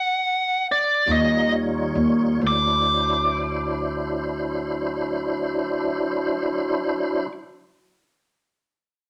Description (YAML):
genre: slow blues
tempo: 42-51 BPM (dotted quarters)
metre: 12/8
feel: straight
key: D mixolydian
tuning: A4 = 440 Hz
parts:
  - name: biting lead guitar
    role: melody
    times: 0.0-7.3 s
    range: D5 to D6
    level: -23 LUFS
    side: equal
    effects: overdrive
  - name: tonewheel organ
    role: sustained chords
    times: 1.1-7.3 s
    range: F#3 to Db5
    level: -27 LUFS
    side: equal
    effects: slow rotary speaker, overdrive, chorus vibrato
  - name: upright bass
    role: bass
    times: 1.1-7.3 s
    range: D2 to Eb2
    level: -27 LUFS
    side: equal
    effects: none
room: wet studio reverb, RT60 0.9 s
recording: none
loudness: -23 LUFS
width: mono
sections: 0.0-2.4 A section; 2.4-8.1 B section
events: slowing down 0.0-2.4; lead electric guitar solo 0.0-2.4; stop 0.0-1.1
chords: 0.0 D; 1.1 Eb9; 2.4 D9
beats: 1.09 | 2.44 3.85 5.26 6.67